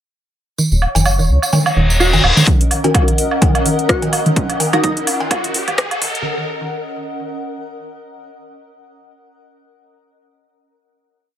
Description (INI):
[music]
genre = minimal techno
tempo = 127 BPM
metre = 4/4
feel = swing 56% on 16ths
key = Eb minor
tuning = A4 = 441 Hz
[part]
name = mallet-like synth pluck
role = riff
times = 0.6-6.1 s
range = Eb3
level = -22 LUFS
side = equal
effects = chorus, sidechain pumping, digital delay
[part]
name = tambourine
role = percussion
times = 0.6-2.5 s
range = none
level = -23 LUFS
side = right 3 dB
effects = none
[part]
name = bubbling stepped-filter texture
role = texture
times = 0.8-2.5 s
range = Db5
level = -29 LUFS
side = right 4 dB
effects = chorus, built-in reverb, sidechain pumping
[part]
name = granular cloud pad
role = texture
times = 1.6-6.3 s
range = Db4 to Gb5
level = -24 LUFS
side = left 1 dB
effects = built-in reverb, sidechain pumping
[part]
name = rubbery square bass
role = bass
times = 0.7-6.1 s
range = Eb1 to Db2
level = -16 LUFS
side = equal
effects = sidechain pumping, high-pass filter
[part]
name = electronic woodblock, cowbell and toms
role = percussion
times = 0.8-6.1 s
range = none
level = -20 LUFS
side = right 1 dB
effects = overdrive
[part]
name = reverse cymbal and riser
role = sound effects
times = 1.7-6.3 s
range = none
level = -21 LUFS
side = left 2 dB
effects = none
[part]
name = glassy wavetable pluck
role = melody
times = 2.0-4.9 s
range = Eb4 to Gb4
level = -20 LUFS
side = right 2 dB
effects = chorus, digital delay
[part]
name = electronic kick drum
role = drums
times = 2.5-5.9 s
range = none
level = -16 LUFS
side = equal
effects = none
[part]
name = garage drum kit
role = drums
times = 2.5-6.2 s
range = hi-hat, rim click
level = -20 LUFS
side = equal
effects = low-pass filter on hats, low-pass filter on snare
[part]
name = filtered dub chord stab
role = stabs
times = 2.8-4.8 s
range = Db4 to Bb4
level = -20 LUFS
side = left 2 dB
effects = phaser, digital delay
[sound]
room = light reverb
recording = high-pass filter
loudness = -13 LUFS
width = side -11 dB against mid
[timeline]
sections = 0.6-2.5 intro; 2.5-6.3 build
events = filter sweep on synth arpeggio sound 0.6-2.5, 2.5-6.3; reverse cymbal 1.7-2.5; build-up 2.5-6.3; riser 2.5-6.3; filter sweep 2.5-6.3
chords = 0.6 Ebm7